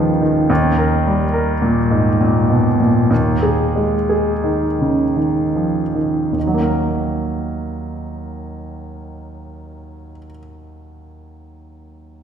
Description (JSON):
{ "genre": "classical", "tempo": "49-71 BPM", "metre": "3/4", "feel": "rubato", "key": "Eb minor", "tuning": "A4 = 440 Hz", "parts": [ { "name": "bright grand piano", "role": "melody", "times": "0.0-12.2 s", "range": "Eb2 to Cb5", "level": "-16 LUFS", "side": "equal", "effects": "none" } ], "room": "wet concert hall reverb, RT60 2.2 s", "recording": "heard from further back in the room", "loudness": "-15 LUFS", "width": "side -8 dB against mid", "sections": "0.0-6.3 A section; 6.3-9.6 B section", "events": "slowing down 0.0-6.3", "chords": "0.5 Eb; 3.1 Ab5/Eb; 6.3 Ebm" }